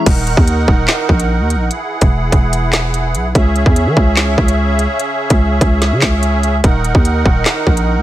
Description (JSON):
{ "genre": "hip hop, drill", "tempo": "146 BPM", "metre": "4/4", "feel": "half-time", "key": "Eb phrygian", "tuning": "A4 = 440 Hz", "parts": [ { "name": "musette accordion", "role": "sustained chords", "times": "0.0-8.0 s", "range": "Db3 to Gb5", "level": "-18 LUFS", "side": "right 2 dB", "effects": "stereo widening" }, { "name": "growling 808-style bass", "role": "bass", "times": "0.1-8.0 s", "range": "Eb1 to Fb3", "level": "-15 LUFS", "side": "equal", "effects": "none" }, { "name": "drill drum kit", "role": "drums", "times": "0.1-7.9 s", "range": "crash cymbal, handclaps, hi-hat, kick drum, snare drum", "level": "-13 LUFS", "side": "equal", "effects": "vintage 12-bit sampler grit" } ], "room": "little or no reverb", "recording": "low-pass filter", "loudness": "-11 LUFS", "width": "side -14 dB against mid", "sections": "0.1-8.0 A section", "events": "none", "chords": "0.1 Ebm; 1.7 Eadd9; 3.4 Dbm; 6.6 Ebm", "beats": "| 0.06 0.47 0.89 1.30 | 1.71 2.12 2.53 2.94 | 3.35 3.76 4.17 4.58 | 5.00 5.41 5.82 6.23 | 6.64 7.05 7.46 7.87" }